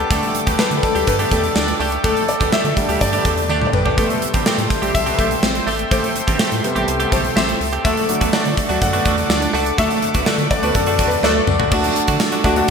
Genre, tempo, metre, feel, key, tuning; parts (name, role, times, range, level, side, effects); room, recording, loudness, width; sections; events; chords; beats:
1980s-style pop; 124 BPM; 4/4; straight; A4 = 441 Hz
clear baby grand piano; accompaniment; 0.0-12.7 s; C3 to F#5; -21 LUFS; left 2 dB
chorused pulse-width pad; sustained chords; 0.0-12.7 s; A4 to D6; -25 LUFS; left 1 dB
direct-recorded clean electric guitar; riff; 0.0-12.6 s; A3 to G4; -24 LUFS; right 3 dB; wide subtle chorus, ping-pong delay
rubbery square bass; bass; 0.0-12.6 s; Ab1 to D3; -25 LUFS; equal
analog synth brass; stabs; 0.1-11.4 s; F#3 to D5; -24 LUFS; right 2 dB; chorus
gated 80s drum kit; drums; 0.1-12.7 s; crash cymbal, hi-hat, kick drum, snare drum, tambourine, toms; -20 LUFS; equal; gated reverb
tambourine; percussion; 0.1-12.6 s; -36 LUFS; left 6 dB
wet lush hall reverb, RT60 1.9 s, small room ambience; bright 1980s-style digital production; -15 LUFS; side -6 dB against mid
0.0-11.7 A section
grand piano solo 0.0-11.7; drum fill 3.5-4.0, 11.2-11.7
0.1 Dsus4; 4.0 Am7; 7.8 D
| 0.11 0.59 1.07 1.56 | 2.04 2.53 3.01 3.49 | 3.98 4.46 4.95 5.43 | 5.91 6.40 6.88 7.37 | 7.85 8.33 8.82 9.30 | 9.78 10.27 10.75 11.24 | 11.72 12.20 12.69